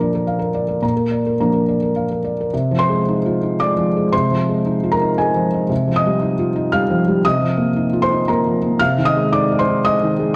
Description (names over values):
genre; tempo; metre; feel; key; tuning
neoclassical minimalist piano; 105-117 BPM; 3/4; rubato; unclear; A4 = 441 Hz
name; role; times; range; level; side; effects
felt-muted upright piano; solo; 0.0-10.4 s; Bb2 to F6; -18 LUFS; equal; none
room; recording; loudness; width
moderate scoring stage reverb, RT60 1.8 s; dark, warm production; -18 LUFS; mono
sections
0.0-2.5 A section; 2.5-10.4 B section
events
none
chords
0.0 Bb; 2.5 Ab6/C; 5.7 Ebadd9/C; 7.2 Bbsus4/C; 8.8 Ab6/C